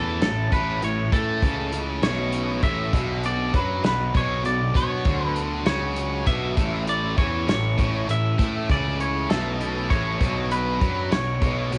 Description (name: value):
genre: indie rock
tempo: 66 BPM (dotted quarters)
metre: 6/8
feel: straight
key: A major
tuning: A4 = 440 Hz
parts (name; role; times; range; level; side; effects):
- twangy electric guitar; melody; 0.0-11.8 s; A4 to E5; -30 LUFS; equal; cassette tape
- biting overdriven guitar; riff; 0.0-11.8 s; B2 to F#4; -35 LUFS; equal; subtle chorus, cassette tape
- heavy high-gain guitar; riff; 0.0-11.8 s; A2 to B3; -30 LUFS; equal; distortion, cassette tape
- fuzz picked electric bass; bass; 0.0-11.8 s; A1 to B2; -31 LUFS; equal; overdrive
- loose indie drum kit; drums; 0.2-11.8 s; hi-hat, kick drum, snare drum; -28 LUFS; equal; cassette tape
room: light reverb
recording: home recording on cassette, nothing above 10.8 kHz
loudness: -23 LUFS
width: mono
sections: 0.0-11.8 A section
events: none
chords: 0.0 A; 2.9 Bmadd9; 6.6 A; 10.2 Bmadd9